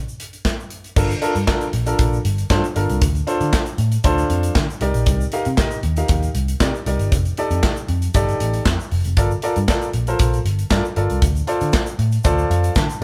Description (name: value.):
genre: early-eighties boogie funk.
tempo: 117 BPM.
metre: 4/4.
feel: straight.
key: unclear.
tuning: A4 = 444 Hz.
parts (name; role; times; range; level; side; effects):
egg shaker; percussion; 0.1-13.0 s; none; -42 LUFS; equal; none.
modern studio drum kit; drums; 0.2-13.0 s; crash cymbal, handclaps, hi-hat, kick drum, snare drum; -23 LUFS; equal; none.
warm concert grand piano; accompaniment; 1.0-13.0 s; D4 to A5; -25 LUFS; equal; none.
vintage muted picked electric bass; bass; 1.0-13.0 s; F1 to D3; -22 LUFS; equal; none.
room: light reverb.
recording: band playing live in one room.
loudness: -19 LUFS.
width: mono.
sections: 1.0-13.0 A section.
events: grand piano fill 12.2-13.0.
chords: 0.0 N.C.; 1.0 Gm7; 3.0 Dm7; 4.8 Cm9; 7.1 F13; 9.2 Gm7; 11.2 Dm7.